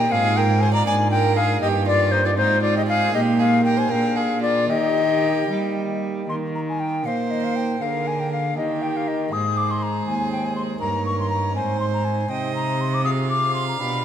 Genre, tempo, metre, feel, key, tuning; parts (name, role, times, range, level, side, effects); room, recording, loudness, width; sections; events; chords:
classical, baroque-style sonata movement with continuo; 80 BPM (dotted quarters); 6/8; straight; Eb major; A4 = 443 Hz
bright baroque flute; melody; 0.0-14.0 s; C5 to Eb6; -23 LUFS; left 4 dB
warm violin; second line; 0.0-14.0 s; Eb4 to F5; -28 LUFS; right 7 dB
pipe organ, principal; accompaniment; 0.0-14.0 s; Eb2 to Db5; -27 LUFS; right 1 dB
rich cello; bass; 0.0-14.0 s; Eb2 to G3; -24 LUFS; right 1 dB
wet concert hall reverb, RT60 2.3 s; -19 LUFS; side -9 dB against mid
0.0-6.3 A section; 6.3-14.0 B section
0.1 Fm7/Ab; 0.9 Bb7/Ab; 1.6 Eb/G; 2.4 Fm7/Ab; 3.1 Eb/Bb; 3.9 Bb7; 4.7 Eb; 6.3 Eb5; 7.8 Bb7/D; 8.6 Eb; 9.3 Ab; 10.8 Eb7/G; 11.6 Ab; 12.3 Cm; 13.1 Fm/C